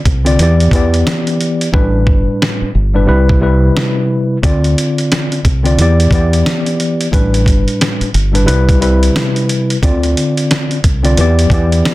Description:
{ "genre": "hip hop, boom-bap hip-hop", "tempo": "89 BPM", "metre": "4/4", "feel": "swing 60% on 16ths", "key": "D dorian", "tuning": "A4 = 440 Hz", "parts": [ { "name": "deep dub fingered electric bass", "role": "bass", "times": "0.1-11.8 s", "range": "G1 to E2", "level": "-13 LUFS", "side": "equal", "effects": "none" }, { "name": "dusty soul sampler-style drum kit", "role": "drums", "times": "0.1-11.9 s", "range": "hi-hat, kick drum, snare drum", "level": "-15 LUFS", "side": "equal", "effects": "none" }, { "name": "mellow tine electric piano", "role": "accompaniment", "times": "0.2-11.9 s", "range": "A2 to D5", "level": "-14 LUFS", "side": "left 1 dB", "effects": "medium stereo tremolo, cassette tape, high-pass filter, low-pass filter" } ], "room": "light reverb", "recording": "dense, heavily limited modern master", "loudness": "-10 LUFS", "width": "side -18 dB against mid", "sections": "0.0-11.9 A section", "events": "hi-hats muted 1.7-4.4", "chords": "0.4 Em7; 1.7 A9sus4; 3.1 Cmaj7; 4.4 Dm7; 5.8 Em7; 7.1 A9sus4; 8.5 Cmaj7; 9.8 Dm7; 11.2 Em7" }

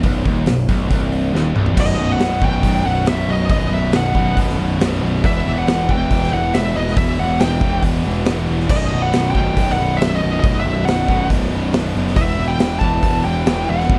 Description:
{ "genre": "heavy metal", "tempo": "138 BPM", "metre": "4/4", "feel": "straight", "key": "B major", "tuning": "A4 = 440 Hz", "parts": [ { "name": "distorted electric guitar", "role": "riff", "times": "0.0-14.0 s", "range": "B1 to E3", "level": "-27 LUFS", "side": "equal", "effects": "overdrive" }, { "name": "heavy high-gain guitar", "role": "riff", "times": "0.0-14.0 s", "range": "B1 to E3", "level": "-28 LUFS", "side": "equal", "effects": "distortion" }, { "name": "scooped high-gain guitar", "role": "riff", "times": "0.0-14.0 s", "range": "B1 to E3", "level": "-29 LUFS", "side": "equal", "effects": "none" }, { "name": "fuzz picked electric bass", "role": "bass", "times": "0.0-14.0 s", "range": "B0 to F#1", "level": "-23 LUFS", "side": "equal", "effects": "overdrive" }, { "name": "big rock drum kit", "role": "drums", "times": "0.0-14.0 s", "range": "crash cymbal, hi-hat, kick drum, snare drum, toms", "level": "-22 LUFS", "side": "equal", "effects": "none" }, { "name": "high-gain lead guitar", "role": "melody", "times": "1.8-14.0 s", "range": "D#5 to A5", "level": "-25 LUFS", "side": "equal", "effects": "distortion" } ], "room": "light reverb", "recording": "none", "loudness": "-17 LUFS", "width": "mono", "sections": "0.0-1.8 A section; 1.8-14.0 B section", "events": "drum fill 1.3-1.8", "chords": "0.0 B; 1.8 B5; 5.2 Em; 8.7 B5; 12.2 Em" }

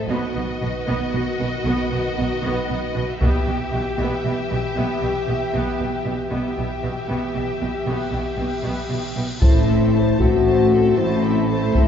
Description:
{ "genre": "cinematic, epic orchestral film score", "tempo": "77 BPM (dotted quarters)", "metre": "12/8", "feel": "straight", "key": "E harmonic minor", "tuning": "A4 = 440 Hz", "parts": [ { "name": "rich studio violin section", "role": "melody", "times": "0.0-11.9 s", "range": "D#5 to A5", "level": "-32 LUFS", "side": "left 2 dB", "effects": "none" }, { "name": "rich symphonic violin section", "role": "second line", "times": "0.0-11.9 s", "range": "F#4 to C5", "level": "-29 LUFS", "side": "left 2 dB", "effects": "none" }, { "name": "mellow French horn section", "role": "sustained chords", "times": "0.0-11.9 s", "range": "D#3 to B4", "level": "-24 LUFS", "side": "left 4 dB", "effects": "none" }, { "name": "warm symphonic viola section", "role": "accompaniment", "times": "0.1-11.9 s", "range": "A3 to C4", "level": "-28 LUFS", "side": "right 2 dB", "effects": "none" }, { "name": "clear symphonic cello section", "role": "bass", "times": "0.1-11.9 s", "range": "A2 to B2", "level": "-26 LUFS", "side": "equal", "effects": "none" }, { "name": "rich symphonic double bass section", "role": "bass", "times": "0.1-11.9 s", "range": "A1 to B1", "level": "-27 LUFS", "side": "right 3 dB", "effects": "none" }, { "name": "taiko ensemble", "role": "drums", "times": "3.2-4.2, 9.4-11.9 s", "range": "none", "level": "-20 LUFS", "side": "equal", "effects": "none" }, { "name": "cymbal swell and impact", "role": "sound effects", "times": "8.0-11.9 s", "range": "none", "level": "-34 LUFS", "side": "equal", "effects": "none" }, { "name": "mellow tuba", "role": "bass", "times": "9.4-11.9 s", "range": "A1", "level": "-26 LUFS", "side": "equal", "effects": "none" } ], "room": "wet scoring stage reverb, RT60 1.8 s", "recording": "heard from further back in the room, nothing above 7.5 kHz", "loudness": "-19 LUFS", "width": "side -8 dB against mid", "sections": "0.0-9.4 A section; 9.4-11.9 B section", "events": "build-up 0.0-9.4; cymbal swell 8.0-9.4; impact 9.4-11.9", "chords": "0.1 B; 3.2 Em/B; 9.4 Am" }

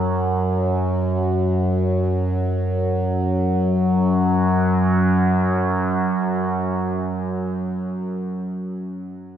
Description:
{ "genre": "ambient", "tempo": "free time", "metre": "none", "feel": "none", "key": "unclear", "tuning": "A4 = 440 Hz", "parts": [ { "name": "overtone-sweeping drone", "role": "drone", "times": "0.0-7.5 s", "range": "F#2 to F#3", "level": "-19 LUFS", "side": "equal", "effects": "chorus, built-in reverb" } ], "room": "wet cathedral reverb, RT60 5.0 s", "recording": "none", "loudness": "-18 LUFS", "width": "side -9 dB against mid", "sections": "0.0-3.3 A section; 3.3-7.0 B section", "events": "none", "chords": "none" }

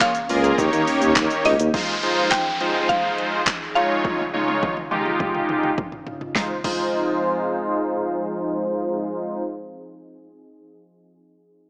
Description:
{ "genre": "dance-pop", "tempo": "104 BPM", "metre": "4/4", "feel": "straight", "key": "F minor", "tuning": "A4 = 441 Hz", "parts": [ { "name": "mallet-like synth pluck", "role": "melody", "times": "0.0-5.7 s", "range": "Eb5 to G5", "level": "-26 LUFS", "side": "equal", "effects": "chorus, low-pass filter" }, { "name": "big bright polysynth", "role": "accompaniment", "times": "0.0-9.4 s", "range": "Ab3 to Db5", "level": "-24 LUFS", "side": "equal", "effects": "chorus, low-pass filter" }, { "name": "glassy FM pad", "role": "sustained chords", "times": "0.0-9.4 s", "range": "Db2 to Ab4", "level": "-35 LUFS", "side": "equal", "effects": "ensemble chorus, built-in reverb, sidechain pumping, low-pass filter" }, { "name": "deep house drum kit", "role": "drums", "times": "0.0-6.8 s", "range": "crash cymbal, handclaps, hi-hat, kick drum, shaker, snare drum, toms", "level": "-28 LUFS", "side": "equal", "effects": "none" }, { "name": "warm tuba", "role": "bass", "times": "0.3-1.7 s", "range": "Db2 to Eb3", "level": "-23 LUFS", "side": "equal", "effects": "sidechain pumping" }, { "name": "downlifter", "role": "sound effects", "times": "1.7-6.4 s", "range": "none", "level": "-32 LUFS", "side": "equal", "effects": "none" } ], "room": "light reverb", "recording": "small speaker sound", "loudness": "-22 LUFS", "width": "mono", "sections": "0.0-1.7 A section; 1.7-6.4 B section; 6.4-8.7 C section", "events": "filter sweep 1.7-6.4; drum fill 4.0-6.4", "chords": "0.0 Bbm7; 0.6 Eb7; 1.7 Fm7; 3.8 Dbadd9; 6.4 Fm7" }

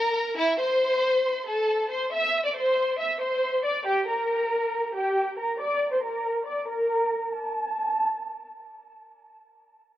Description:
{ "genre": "hip hop", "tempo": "138 BPM", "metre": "4/4", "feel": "half-time", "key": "A phrygian", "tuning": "A4 = 436 Hz", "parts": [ { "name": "rich studio violin section", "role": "solo", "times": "0.0-8.6 s", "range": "E4 to E6", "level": "-24 LUFS", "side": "equal", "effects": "low-pass filter" } ], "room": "moderate scoring stage reverb, RT60 1.6 s", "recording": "worn, warbling old tape, cassette tape, warbly pitch drift", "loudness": "-23 LUFS", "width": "side -13 dB against mid", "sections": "0.4-7.3 A section; 7.3-10.0 B section", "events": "filter sweep on violin section 0.4-7.3", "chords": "0.4 Am; 3.9 Gm; 7.3 N.C." }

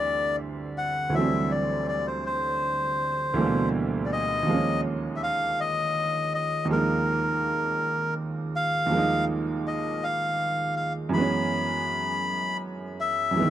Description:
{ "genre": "R&B", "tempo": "54 BPM (dotted quarters)", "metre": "6/8", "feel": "straight", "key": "unclear", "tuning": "A4 = 440 Hz", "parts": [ { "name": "melodica", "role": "melody", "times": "0.0-13.5 s", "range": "Bb4 to Cb6", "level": "-26 LUFS", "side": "left 2 dB", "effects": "none" }, { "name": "clear grand piano", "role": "accompaniment", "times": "0.0-13.5 s", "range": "D2 to Eb4", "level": "-27 LUFS", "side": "right 3 dB", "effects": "none" } ], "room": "little or no reverb", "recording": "dry, close 1970s-style studio recording", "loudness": "-24 LUFS", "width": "side -11 dB against mid", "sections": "0.0-4.5 A section; 4.5-13.5 A section", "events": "none", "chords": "0.0 D9sus4; 4.5 Eb9sus4; 11.1 Gb9sus4" }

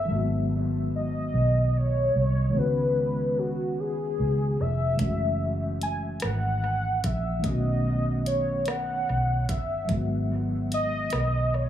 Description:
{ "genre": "slow six-eight R&B", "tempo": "49 BPM (dotted quarters)", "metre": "6/8", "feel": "straight", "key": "unclear", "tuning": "A4 = 440 Hz", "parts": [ { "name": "warm velvety synth lead", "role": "melody", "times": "0.0-11.7 s", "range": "F#4 to G#5", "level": "-28 LUFS", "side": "left 1 dB", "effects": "chorus, dub echo" }, { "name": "mellow reed electric piano", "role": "accompaniment", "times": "0.0-11.7 s", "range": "D#3 to F#4", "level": "-30 LUFS", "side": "left 2 dB", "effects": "fast tremolo, dub echo" }, { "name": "vintage muted fingered electric bass", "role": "bass", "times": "0.0-11.7 s", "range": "E#1 to C#2", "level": "-27 LUFS", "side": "right 1 dB", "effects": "none" }, { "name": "smooth R&B drum kit", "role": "drums", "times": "5.0-11.3 s", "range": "hi-hat, kick drum, rim click", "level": "-32 LUFS", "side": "right 1 dB", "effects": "dub echo" } ], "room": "light reverb", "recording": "echo-heavy mix, small room reverb", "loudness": "-24 LUFS", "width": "side -11 dB against mid", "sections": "0.0-11.7 A section", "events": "none", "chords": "0.1 G#m7; 2.5 C#9sus4; 5.0 F#m9; 7.4 B9; 9.9 G#m7" }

